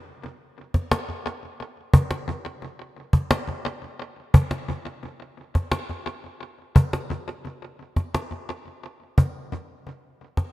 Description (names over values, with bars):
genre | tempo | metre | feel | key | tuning
world meditative | 174 BPM (eighths) | 7/8 | straight | none | none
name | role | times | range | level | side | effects
cajon | percussion | 0.2-10.5 s | none | -21 LUFS | equal | tape echo
room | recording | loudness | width
light reverb, small room ambience | echo-heavy mix | -22 LUFS | side -18 dB against mid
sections
0.0-4.3 A section; 4.3-10.5 B section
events
none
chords
none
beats
0.22 0.57 0.91 1.25 1.60 | 1.94 2.28 2.62 2.97 3.31 3.66 4.00 | 4.34 4.69 5.03 5.38 5.72 6.07 6.41 | 6.75 7.10 7.44 7.79 8.13 8.48 8.82 | 9.17 9.51 9.86 10.20